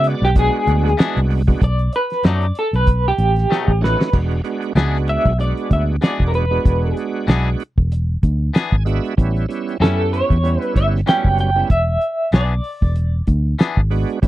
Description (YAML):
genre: straight-eighth soul blues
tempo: 95 BPM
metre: 4/4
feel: swing 56% on 16ths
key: E mixolydian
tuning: A4 = 440 Hz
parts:
  - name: electric guitar through a small old amp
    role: melody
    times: 0.0-13.2 s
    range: G4 to G5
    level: -20 LUFS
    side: right 1 dB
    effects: tremolo
  - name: bright tonewheel organ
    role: accompaniment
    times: 0.0-14.3 s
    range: F#3 to G#5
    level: -24 LUFS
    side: right 6 dB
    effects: slow rotary speaker, overdrive, chorus vibrato
  - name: vintage muted fingered electric bass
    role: bass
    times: 0.0-14.3 s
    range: E1 to C#3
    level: -18 LUFS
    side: equal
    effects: none
  - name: cloth-damped thuddy drum kit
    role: drums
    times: 0.0-14.3 s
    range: crash cymbal, hi-hat, kick drum, snare drum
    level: -16 LUFS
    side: equal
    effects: none
  - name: twangy electric guitar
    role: stabs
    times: 1.0-13.8 s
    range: A2 to G#4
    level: -23 LUFS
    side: left 6 dB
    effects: none
room: little or no reverb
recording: dry, close 1970s-style studio recording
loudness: -15 LUFS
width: side -15 dB against mid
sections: 0.0-4.1 A section; 4.1-14.3 B section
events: clean electric guitar solo 0.0-4.1; drum fill 3.5-4.1; tonewheel organ fill 8.2-9.2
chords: 0.0 E7; 1.6 B7; 4.1 E7; 9.2 A7; 11.7 E7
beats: 0.36 0.99 | 1.62 2.25 2.87 3.50 | 4.13 4.76 5.39 6.02 | 6.65 7.28 7.91 8.54 | 9.17 9.80 10.43 11.06 | 11.70 12.33 12.96 13.59 | 14.22